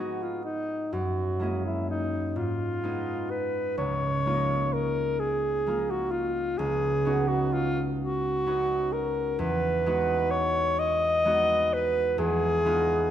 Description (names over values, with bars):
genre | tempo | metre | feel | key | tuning
classical, impressionist duo for alto saxophone and harp | 43 BPM (dotted quarters) | 6/8 | rubato | G# minor | A4 = 442 Hz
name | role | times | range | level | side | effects
clear alto saxophone | melody | 0.0-13.1 s | D#4 to D#5 | -26 LUFS | equal | none
concert harp | accompaniment | 0.0-13.1 s | C#2 to A#4 | -29 LUFS | right 1 dB | none
room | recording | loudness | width
moderate scoring stage reverb, RT60 1.4 s | none | -24 LUFS | side -10 dB against mid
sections
0.0-13.1 A section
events
none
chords
0.0 G#madd9; 0.9 F#9; 2.4 G#m6; 3.8 C#69; 6.6 Badd9/C#; 9.4 Emaj9; 12.2 G#m6/E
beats
| 0.93 2.36 | 3.79 5.21 | 6.60 8.00 | 9.40 10.80 | 12.19